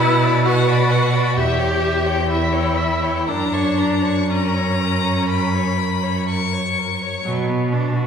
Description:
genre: classical, slow romantic movement for string quartet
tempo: 59-67 BPM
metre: 4/4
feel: rubato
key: B minor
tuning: A4 = 439 Hz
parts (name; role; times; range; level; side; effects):
- rich violin; melody; 0.0-7.2 s; E5 to C#6; -25 LUFS; left 7 dB; none
- warm violin; second line; 0.0-7.3 s; A#4 to E5; -26 LUFS; left 2 dB; none
- clear viola; accompaniment; 0.0-8.1 s; F#3 to G4; -21 LUFS; equal; none
- clear cello; bass; 0.0-8.0 s; E2 to B2; -20 LUFS; right 2 dB; none
room: wet recital hall reverb, RT60 1.6 s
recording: recorded in a church or concert hall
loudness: -16 LUFS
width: side -7 dB against mid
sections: 0.0-7.3 A section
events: none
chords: 0.0 Bm; 1.4 C#dim/E; 3.3 F#; 7.3 Bm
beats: 0.46 1.36 2.30 | 3.29 4.30 5.30 6.28 | 7.26

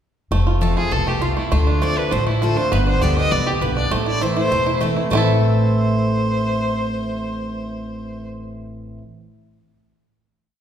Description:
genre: bluegrass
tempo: 200 BPM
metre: 4/4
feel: straight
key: A minor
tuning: A4 = 440 Hz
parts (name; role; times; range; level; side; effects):
- picked steel-string acoustic guitar; accompaniment; 0.3-9.0 s; E2 to G4; -23 LUFS; equal; none
- bluegrass banjo; arpeggios; 0.3-9.0 s; F3 to A4; -23 LUFS; right 3 dB; none
- upright bass; bass; 0.3-9.0 s; E1 to D2; -22 LUFS; equal; none
- clear fiddle; melody; 0.8-8.3 s; E4 to D#5; -24 LUFS; equal; none
room: wet recital hall reverb, RT60 1.6 s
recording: recorded in a church or concert hall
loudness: -17 LUFS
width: side -9 dB against mid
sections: 0.3-5.1 A section; 5.1-7.5 final chord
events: none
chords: 0.3 F; 1.5 Dm7; 2.7 G; 3.9 Am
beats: | 0.32 0.62 0.92 1.22 | 1.52 1.82 2.12 2.42 | 2.72 3.02 3.31 3.61 | 3.91 4.21 4.51 4.81 | 5.11 5.41 5.71 6.01 | 6.31 6.61 6.91 7.21

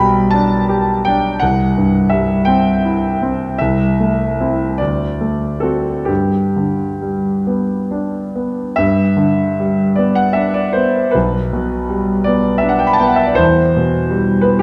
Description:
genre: classical, romantic nocturne for solo piano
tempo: 42-58 BPM (dotted quarters)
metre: 12/8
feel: rubato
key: G major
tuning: A4 = 440 Hz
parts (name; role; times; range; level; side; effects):
- clear concert grand piano; solo; 0.0-14.6 s; B1 to B5; -16 LUFS; equal; none
room: wet recital hall reverb, RT60 1.6 s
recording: dark, warm production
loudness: -16 LUFS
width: mono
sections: 0.0-8.8 A section; 8.8-14.6 A section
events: none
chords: 0.0 G/B; 1.4 C; 3.6 Am/C; 4.8 D7; 6.1 G; 11.1 G/B; 13.4 Em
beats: 0.33 1.41 2.47 | 3.59 4.79 6.09 7.47 | 8.80 10.00 11.14 12.27 | 13.40 14.47

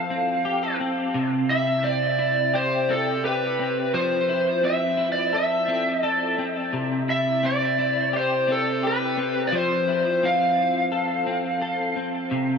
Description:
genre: dream pop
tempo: 86 BPM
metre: 4/4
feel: straight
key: unclear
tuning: A4 = 442 Hz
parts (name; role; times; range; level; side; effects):
- overdriven slide guitar; melody; 0.0-11.9 s; A4 to F5; -22 LUFS; right 1 dB; dub echo
- clean electric guitar; arpeggios; 0.0-12.6 s; C3 to A4; -26 LUFS; left 2 dB; ensemble chorus, dub echo
room: wet echo chamber reverb, RT60 2.5 s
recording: echo-heavy mix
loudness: -21 LUFS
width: side -6 dB against mid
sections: 0.0-12.6 A section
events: none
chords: 0.0 Fmaj7; 1.1 C; 3.9 Fmaj7; 6.7 C; 9.5 Fmaj7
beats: 0.45 | 1.15 1.84 2.54 3.24 | 3.94 4.64 5.33 6.03 | 6.73 7.43 8.12 8.82 | 9.52 10.22 10.91 11.61 | 12.31

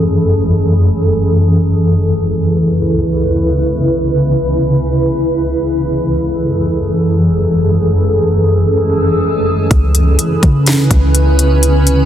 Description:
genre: hip hop, atmospheric cloud-rap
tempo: free time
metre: none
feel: none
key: C# minor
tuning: A4 = 440 Hz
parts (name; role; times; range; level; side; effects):
- granular cloud pad; sustained chords; 0.0-12.1 s; C#2 to B4; -12 LUFS; equal; built-in reverb, sidechain pumping
- soft 808-style bass; bass; 9.7-12.1 s; C#2 to C#3; -11 LUFS; equal; none
- trap drum kit; drums; 9.7-12.0 s; hi-hat, kick drum, snare drum; -13 LUFS; equal; none
room: moderate lush hall reverb, RT60 2.0 s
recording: dense, heavily limited modern master, low-pass filter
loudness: -11 LUFS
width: side -10 dB against mid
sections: 0.0-9.7 A section; 9.7-12.1 B section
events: filter sweep 0.0-9.7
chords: 0.0 F#m9; 2.0 C#m7; 5.9 F#m9; 9.7 C#m7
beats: free time

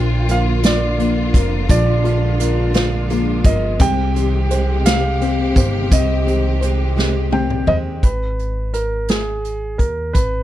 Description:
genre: six-eight pop ballad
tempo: 57 BPM (dotted quarters)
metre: 6/8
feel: straight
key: unclear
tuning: A4 = 444 Hz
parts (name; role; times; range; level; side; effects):
- warm grand piano; melody; 0.0-10.4 s; Ab4 to G5; -24 LUFS; right 2 dB; none
- felt-muted upright piano; accompaniment; 0.0-8.1 s; F3 to G5; -22 LUFS; left 6 dB; none
- warm studio string section; sustained chords; 0.0-8.0 s; C3 to G4; -25 LUFS; equal; none
- fingerpicked plugged-in steel-string acoustic guitar; arpeggios; 0.0-8.0 s; Bb2 to G4; -26 LUFS; right 9 dB; none
- upright bass; bass; 0.0-10.4 s; F1 to Eb2; -19 LUFS; equal; none
- unplugged drum kit; drums; 0.3-10.3 s; hi-hat, kick drum, snare drum, toms; -17 LUFS; equal; none
room: little or no reverb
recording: none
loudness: -15 LUFS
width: side -13 dB against mid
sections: 0.0-8.0 A section; 8.0-10.4 B section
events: drum fill 7.0-8.0; felt piano fill 7.0-8.0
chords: 0.0 Bb; 3.8 Abmaj7; 8.0 Abm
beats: 0.64 | 1.69 2.75 | 3.80 4.86 | 5.92 6.97 | 8.03 9.09 | 10.14

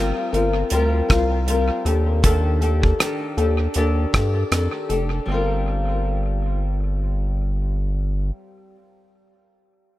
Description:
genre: indie pop, bedroom pop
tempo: 79 BPM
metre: 4/4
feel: swing 55% on 16ths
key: G minor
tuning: A4 = 435 Hz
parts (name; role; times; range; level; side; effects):
- flamenco guitar; accompaniment; 0.0-8.8 s; Eb3 to Bb4; -24 LUFS; left 2 dB; analog chorus, warbly pitch drift, analog delay
- round analog bass; bass; 0.0-8.3 s; F1 to G2; -21 LUFS; equal; none
- damped 70s drum kit; drums; 0.3-5.1 s; hi-hat, kick drum, rim click; -22 LUFS; equal; analog delay
room: small room ambience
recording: echo-heavy mix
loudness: -19 LUFS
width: side -16 dB against mid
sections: 0.0-5.3 A section; 5.3-8.3 B section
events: none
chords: 0.0 Gm7; 1.9 Ebmaj9#11; 5.3 Gm7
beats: 0.71 1.48 | 2.23 3.00 3.75 4.51 | 5.27 6.03 6.79 7.55

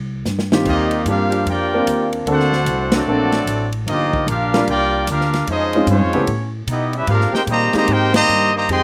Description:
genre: jazz, big band swing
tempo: 149 BPM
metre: 4/4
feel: swing 64% on 8ths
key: Eb major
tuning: A4 = 440 Hz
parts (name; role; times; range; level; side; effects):
- upright bass; bass; 0.0-8.8 s; G1 to B2; -24 LUFS; equal; none
- swinging big-band drum kit; drums; 0.3-8.8 s; crash cymbal, hi-hat, kick drum, ride cymbal, snare drum; -28 LUFS; equal; none
- clear grand piano; accompaniment; 0.5-8.3 s; Eb3 to Bb4; -21 LUFS; equal; none
- bright trumpet section; melody; 0.7-8.8 s; Ab3 to C6; -22 LUFS; equal; slapback echo
- clear trombone section; second line; 0.7-8.8 s; Eb3 to G4; -27 LUFS; equal; none
- warm saxophone section; sustained chords; 1.3-8.8 s; C3 to G4; -27 LUFS; equal; none
room: little or no reverb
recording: recorded outdoors, with no room sound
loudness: -18 LUFS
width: mono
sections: 0.7-8.8 A section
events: drum fill 0.3-0.7; band accent 2.9, 8.1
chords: 0.0 Eb69; 0.7 Ebmaj13; 2.3 D7b13; 3.9 Gm7; 5.5 Dbmaj9#11; 6.3 A9; 7.1 Abmaj9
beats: 0.26 | 0.66 1.06 1.46 1.87 | 2.27 2.67 3.07 3.48 | 3.88 4.28 4.68 5.08 | 5.48 5.88 6.28 6.68 | 7.09 7.49 7.89 8.29 | 8.69

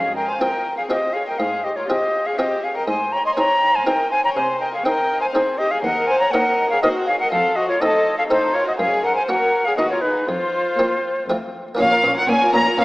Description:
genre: classical, baroque-style concerto movement with solo episodes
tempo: 121 BPM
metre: 3/4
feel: straight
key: Bb minor from 5.8 s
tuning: A4 = 443 Hz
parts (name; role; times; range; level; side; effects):
- bright concert flute; melody; 0.0-12.8 s; B4 to C6; -19 LUFS; equal; none
- dark studio violin section; second line; 0.0-12.8 s; Eb4 to Eb5; -24 LUFS; left 1 dB; none
- buff-stop harpsichord; accompaniment; 0.0-12.8 s; Eb2 to Bb4; -25 LUFS; equal; none
- rich chamber cello section; bass; 0.0-12.8 s; Eb2 to C3; -30 LUFS; right 1 dB; none
- rich chamber violin section; melody; 0.2-12.8 s; F4 to Bb5; -28 LUFS; left 1 dB; none
- warm chamber viola section; accompaniment; 0.4-12.8 s; A3 to F4; -32 LUFS; right 1 dB; none
- dark studio double bass section; bass; 11.8-12.8 s; Bb1; -37 LUFS; right 1 dB; none
room: moderate concert hall reverb, RT60 2.1 s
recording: small speaker sound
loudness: -17 LUFS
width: side -21 dB against mid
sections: 0.0-11.8 A section; 11.8-12.8 B section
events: none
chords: 0.0 Fm; 1.4 Fm/Ab; 2.9 Ab; 4.4 Ab/C; 5.8 Ebm13; 7.3 F7; 8.8 Gb; 9.8 B/D#; 10.3 Fsus4; 11.3 F; 11.8 Bbm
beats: 0.41 0.90 | 1.40 1.89 2.38 | 2.88 3.37 3.86 | 4.36 4.85 5.34 | 5.83 6.32 6.82 | 7.31 7.80 8.30 | 8.79 9.28 9.78 | 10.28 10.79 11.29 | 11.79 12.28 12.78

